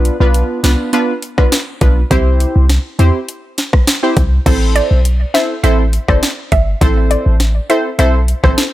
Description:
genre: dancehall.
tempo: 102 BPM.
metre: 4/4.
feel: straight.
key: A minor.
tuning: A4 = 438 Hz.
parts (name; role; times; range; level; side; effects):
synth brass stab; accompaniment; 0.0-8.6 s; B3 to C5; -17 LUFS; right 1 dB; chorus.
clean 808-style bass; bass; 0.0-8.5 s; G1 to E2; -12 LUFS; equal; none.
island pop drum kit; drums; 0.1-8.7 s; crash cymbal, hi-hat, kick drum, rim click, snare drum; -15 LUFS; equal; none.
hollow square pluck; melody; 4.8-8.5 s; C5 to E5; -19 LUFS; right 1 dB; chorus, tape echo.
room: little or no reverb.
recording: none.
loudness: -11 LUFS.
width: side -15 dB against mid.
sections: 0.0-4.5 A section; 4.5-8.7 B section.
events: none.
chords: 0.0 Bdim; 2.1 C; 4.5 Am.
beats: 0.34 0.93 1.52 | 2.11 2.70 3.28 3.87 | 4.46 5.05 5.64 6.23 | 6.81 7.40 7.99 8.58.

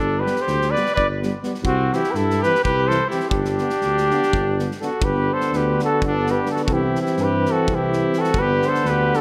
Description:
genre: balkan folk, Balkan brass band.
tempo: 250 BPM (eighths).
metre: 7/8.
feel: straight.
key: G major.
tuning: A4 = 440 Hz.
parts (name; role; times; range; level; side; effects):
warm flugelhorn; melody; 0.0-9.2 s; F#4 to D5; -24 LUFS; equal; none.
bright trumpet; second line; 0.0-9.2 s; C4 to B4; -29 LUFS; equal; none.
dark tuba; bass; 0.0-9.1 s; G1 to G2; -27 LUFS; equal; none.
warm euphonium; accompaniment; 0.2-9.2 s; D3 to G3; -30 LUFS; equal; none.
warm trombone; accompaniment; 0.2-9.2 s; B3 to C4; -30 LUFS; equal; none.
loose indie drum kit; percussion; 0.3-9.2 s; kick drum, snare drum; -31 LUFS; equal; none.
room: moderate concert hall reverb, RT60 2.2 s.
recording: none.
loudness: -20 LUFS.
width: mono.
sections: 0.0-5.0 A section; 5.0-9.2 B section.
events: none.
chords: 0.0 G; 1.6 C; 3.3 G; 6.7 C; 8.4 G.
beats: 0.20 0.44 0.68 0.93 1.17 1.41 | 1.65 1.89 2.13 2.37 2.61 2.85 3.09 | 3.33 3.57 3.81 4.05 4.29 4.53 4.77 | 5.01 5.25 5.49 5.73 5.97 6.21 6.45 | 6.69 6.92 7.17 7.40 7.64 7.88 8.12 | 8.36 8.60 8.84 9.08.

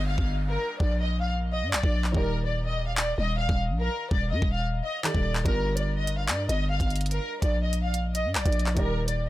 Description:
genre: hip hop, drill.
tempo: 145 BPM.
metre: 4/4.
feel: half-time.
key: G minor.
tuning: A4 = 445 Hz.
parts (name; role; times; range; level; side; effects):
dark studio violin section; melody; 0.0-9.3 s; Bb4 to F5; -30 LUFS; left 1 dB; tape echo.
dark baby grand piano; accompaniment; 0.0-9.3 s; Eb3 to D5; -37 LUFS; right 2 dB; none.
growling 808-style bass; bass; 0.0-9.3 s; Eb1 to G2; -27 LUFS; equal; none.
downlifter; sound effects; 0.0-2.1 s; none; -47 LUFS; equal; none.
drill drum kit; drums; 0.2-9.2 s; handclaps, hi-hat, kick drum; -27 LUFS; equal; none.
room: studio ambience.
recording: none.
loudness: -24 LUFS.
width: side -16 dB against mid.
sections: 0.0-9.3 A section.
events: break 0.0-5.5.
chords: 0.0 Gm7; 2.1 Ebmaj7; 5.5 Gm7; 8.8 Ebmaj7.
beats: 0.08 | 0.49 0.90 1.32 1.73 | 2.15 2.56 2.97 3.39 | 3.80 4.21 4.63 5.04 | 5.46 5.87 6.28 6.70 | 7.11 7.53 7.94 8.35 | 8.77 9.18.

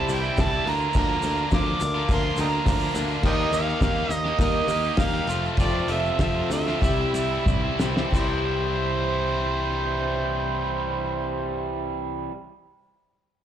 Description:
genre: folk rock and heartland rock.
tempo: 89-105 BPM.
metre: 4/4.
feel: straight.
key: C mixolydian.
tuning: A4 = 440 Hz.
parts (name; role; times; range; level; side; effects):
overdriven harmonica; melody; 0.0-11.6 s; G4 to D6; -28 LUFS; right 4 dB; slapback echo.
picked plugged-in swing-style acoustic guitar; accompaniment; 0.0-12.3 s; C3 to Bb4; -30 LUFS; left 5 dB; slapback echo.
biting overdriven guitar; riff; 0.0-12.3 s; F2 to G4; -28 LUFS; right 1 dB; spring reverb, slapback echo.
picked electric bass; bass; 0.1-12.3 s; F1 to Eb2; -28 LUFS; right 1 dB; none.
cloth-damped thuddy drum kit; drums; 0.1-8.3 s; crash cymbal, hi-hat, kick drum, snare drum, toms; -26 LUFS; equal; none.
tube shaker; percussion; 0.1-8.4 s; none; -44 LUFS; right 3 dB; none.
room: little or no reverb.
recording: live gig heard through the venue's PA, club reverb.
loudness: -22 LUFS.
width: side -10 dB against mid.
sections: 0.0-8.1 A section; 8.1-10.8 B section.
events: slowing down 3.2-8.1; drum fill 7.5-8.1.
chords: 0.0 C; 0.7 Bb/D; 3.2 Eb; 5.3 F; 6.8 C.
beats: 0.38 | 0.95 1.52 2.10 2.67 | 3.24 3.82 4.40 4.99 | 5.58 6.19 6.82 7.46 | 8.12 8.80 9.47 10.14.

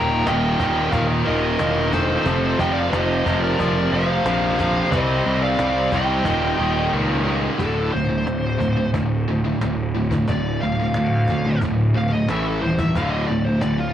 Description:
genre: heavy metal.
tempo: 90 BPM.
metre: 4/4.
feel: straight.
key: D phrygian.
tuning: A4 = 439 Hz.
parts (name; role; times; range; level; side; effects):
high-gain lead guitar; melody; 0.0-13.9 s; F4 to Bb5; -25 LUFS; equal; distortion, cassette tape, analog delay.
high-gain lead guitar; second line; 0.0-6.9 s; A4 to G5; -27 LUFS; right 1 dB; distortion, cassette tape, analog delay.
heavy high-gain guitar; riff; 0.0-13.9 s; D2 to C4; -25 LUFS; left 7 dB; distortion, cassette tape.
heavy high-gain guitar; riff; 0.0-13.9 s; D2 to C4; -24 LUFS; right 6 dB; distortion, cassette tape.
high-gain distorted guitar; riff; 0.0-7.6 s; Eb2 to C4; -28 LUFS; left 1 dB; distortion, cassette tape.
fuzz picked electric bass; bass; 0.0-13.9 s; D1 to D2; -24 LUFS; equal; overdrive.
cajon; drums; 0.3-13.8 s; none; -29 LUFS; equal; none.
room: little or no reverb.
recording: home recording on cassette.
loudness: -18 LUFS.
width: side -10 dB against mid.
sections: 0.0-7.6 A section; 7.6-13.9 B section.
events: kick and snare drop out 6.9-7.6; lead electric guitar solo 7.6-13.9.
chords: 0.0 Eb; 2.3 F5; 4.9 C5; 6.3 Eb; 7.6 Dm; 12.3 A5; 13.0 D5.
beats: 0.27 0.94 1.60 | 2.27 2.93 3.60 4.26 | 4.93 5.59 6.26 6.93 | 7.60 8.27 8.93 9.60 | 10.27 10.95 11.62 12.29 | 12.96 13.62.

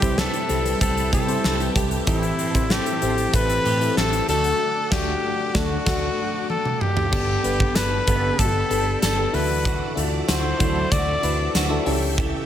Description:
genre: 1980s-style pop.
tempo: 95 BPM.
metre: 4/4.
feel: straight.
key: G major.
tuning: A4 = 440 Hz.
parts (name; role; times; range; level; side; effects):
clear flugelhorn; melody; 0.0-11.6 s; E4 to D5; -25 LUFS; left 2 dB; none.
FM electric piano; accompaniment; 0.0-12.5 s; G2 to C5; -27 LUFS; left 3 dB; chorus.
string machine, violins; sustained chords; 0.0-12.5 s; A4 to D6; -34 LUFS; equal; ensemble chorus.
electric guitar at the edge of break-up; riff; 0.0-12.5 s; E3 to A4; -32 LUFS; right 6 dB; ensemble chorus.
mellow synth brass; stabs; 0.0-10.9 s; D3 to B4; -30 LUFS; right 3 dB; chorus.
vintage muted fingered electric bass; bass; 0.0-12.3 s; G1 to C3; -26 LUFS; equal; none.
huge arena drum kit; drums; 0.0-12.3 s; crash cymbal, hi-hat, kick drum, snare drum, tambourine, toms; -24 LUFS; equal; gated reverb.
room: light reverb, studio ambience.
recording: none.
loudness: -19 LUFS.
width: side -10 dB against mid.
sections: 0.0-7.1 A section; 7.1-12.5 B section.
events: band accent 4.6-7.1; drum fill 6.5-7.1.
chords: 0.0 C6; 2.1 Am7; 4.3 D; 7.1 Gadd9; 9.3 Dadd9; 11.9 A7/C#.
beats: 0.18 0.81 1.44 | 2.08 2.71 3.34 3.97 | 4.60 5.23 5.86 6.50 | 7.13 7.76 8.39 9.02 | 9.65 10.29 10.92 11.55 | 12.18.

